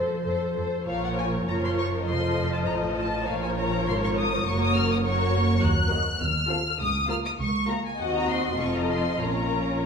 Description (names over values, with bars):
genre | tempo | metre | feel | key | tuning
quick classical-period movement for string orchestra | 101 BPM | 2/4 | rubato | Bb minor | A4 = 438 Hz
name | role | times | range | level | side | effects
rich symphonic violin section | melody | 0.0-9.8 s | C5 to Gb6 | -29 LUFS | left 3 dB | none
warm symphonic violin section | second line | 0.0-9.9 s | Gb4 to F5 | -30 LUFS | left 2 dB | none
warm studio viola section | accompaniment | 0.0-9.9 s | F3 to A4 | -29 LUFS | equal | none
warm symphonic cello section | bass | 0.0-9.9 s | Db2 to F3 | -30 LUFS | right 1 dB | none
warm symphonic double bass section | bass | 0.2-9.9 s | F1 to F2 | -30 LUFS | right 2 dB | none
room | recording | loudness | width
wet recital hall reverb, RT60 1.7 s | recorded in a church or concert hall | -23 LUFS | side -6 dB against mid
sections
0.9-9.9 A section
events
none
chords
0.0 F; 0.9 Bbm; 2.1 F7; 3.3 Bbm; 4.5 Gb; 5.6 Ebm; 6.2 F7/Eb; 6.8 Bbm/Db; 8.0 Cdim/Eb; 8.6 F7; 9.2 Bbm